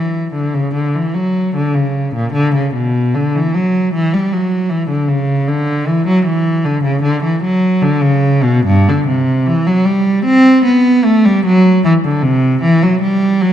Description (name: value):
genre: classical, baroque-style suite movement for unaccompanied cello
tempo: 76 BPM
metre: 4/4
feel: rubato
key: unclear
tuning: A4 = 440 Hz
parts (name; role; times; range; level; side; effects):
- rich cello; solo; 0.0-13.5 s; G2 to C4; -11 LUFS; equal; none
room: moderate concert hall reverb, RT60 1.8 s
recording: dark, warm production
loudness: -11 LUFS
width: side -10 dB against mid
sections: 0.0-13.5 A section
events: none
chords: none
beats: 0.74 1.55 | 2.35 3.15 3.94 4.71 | 5.48 6.27 7.04 7.82 | 8.66 9.47 10.26 11.06 | 11.85 12.62 13.42